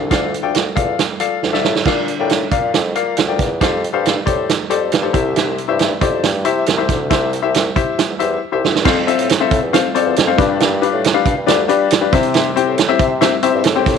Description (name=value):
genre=uptempo 1960s-style soul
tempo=137 BPM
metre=4/4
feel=straight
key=F major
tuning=A4 = 440 Hz
part: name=clear upright piano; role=accompaniment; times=0.0-13.9 s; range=G2 to G5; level=-17 LUFS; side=left 10 dB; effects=none
part: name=mellow bassoon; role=bass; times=0.0-14.0 s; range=C2 to Bb3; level=-21 LUFS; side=right 1 dB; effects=none
part: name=vintage drum kit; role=drums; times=0.1-14.0 s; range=crash cymbal, hi-hat, kick drum, snare drum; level=-17 LUFS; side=right 6 dB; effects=none
room=light reverb, small room reverb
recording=1960s-style stereo with parts hard left and right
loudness=-13 LUFS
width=side -6 dB against mid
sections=0.0-8.9 A section; 8.9-14.0 B section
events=drum fill 1.4-1.9, 8.4-8.9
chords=0.0 Dm; 1.9 Bb; 3.6 Fadd9; 5.1 C; 8.9 F; 10.4 G7; 12.1 C